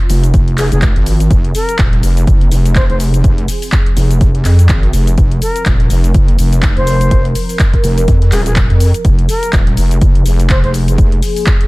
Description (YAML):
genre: bass house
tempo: 124 BPM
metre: 4/4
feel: swing 58% on 16ths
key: F minor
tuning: A4 = 441 Hz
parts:
  - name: sweeping resonant pad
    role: sustained chords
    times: 0.0-11.7 s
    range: F3 to Bb4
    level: -24 LUFS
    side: left 1 dB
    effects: chorus, sidechain pumping
  - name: wobble bass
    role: bass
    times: 0.1-11.2 s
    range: Eb1 to F2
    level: -12 LUFS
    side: equal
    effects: chorus, overdrive, sidechain pumping
  - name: house drum kit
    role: drums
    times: 0.1-11.7 s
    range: handclaps, hi-hat, shaker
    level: -22 LUFS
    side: left 1 dB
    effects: none
  - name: electronic kick drum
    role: drums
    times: 0.3-11.6 s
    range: none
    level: -12 LUFS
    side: equal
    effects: none
  - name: silver concert flute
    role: melody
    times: 0.6-10.7 s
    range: Ab4 to C5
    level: -21 LUFS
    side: left 1 dB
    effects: ping-pong delay
room: little or no reverb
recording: none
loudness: -9 LUFS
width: side -22 dB against mid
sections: 0.0-11.7 A section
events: none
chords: 0.0 Fm